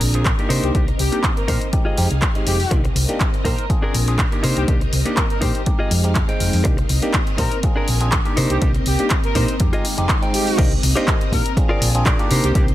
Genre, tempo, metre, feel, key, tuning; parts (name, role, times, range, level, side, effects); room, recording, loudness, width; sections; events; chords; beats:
filtered disco house; 122 BPM; 4/4; swing 53% on 16ths; C minor; A4 = 440 Hz
barky tine electric piano; accompaniment; 0.0-12.6 s; Ab3 to G5; -26 LUFS; equal; phaser, vintage 12-bit sampler grit, sidechain pumping, low-pass filter
string machine, full ensemble; sustained chords; 0.0-12.7 s; Ab3 to Ab5; -29 LUFS; equal; ensemble chorus, sidechain pumping, low-pass filter
hollow-body short-scale fingered electric bass; bass; 0.0-12.7 s; F1 to C3; -20 LUFS; equal; sidechain pumping, low-pass filter
punchy analog drum machine; drums; 0.0-12.7 s; crash cymbal, handclaps, hi-hat; -24 LUFS; equal; sidechain pumping on hats, sidechain pumping on cymbals
direct-recorded clean electric guitar; riff; 0.1-12.7 s; D4 to Eb5; -27 LUFS; left 1 dB; vintage 12-bit sampler grit, sidechain pumping, low-pass filter
electronic kick drum; drums; 0.3-12.7 s; -20 LUFS; equal
analog synth brass; melody; 0.6-12.6 s; G4 to Bb4; -28 LUFS; left 1 dB; chorus, sidechain pumping, low-pass filter, dub echo
little or no reverb; -16 LUFS; side -14 dB against mid
0.0-10.6 A section; 10.6-12.7 B section
drop 10.6-12.7
0.0 Bb7; 0.5 Cm7; 1.7 Fm7; 2.7 Cm7; 3.7 Bb7; 4.4 Cm7; 5.7 Fm7; 6.7 Cm7; 7.6 Bb7; 8.4 Cm7; 9.6 Fm7; 10.6 Cm7; 11.6 Bb7
0.26 | 0.75 1.24 1.73 2.23 | 2.72 3.21 3.70 4.19 | 4.68 5.18 5.67 6.16 | 6.65 7.14 7.63 8.13 | 8.62 9.11 9.60 10.09 | 10.59 11.08 11.57 12.06 | 12.55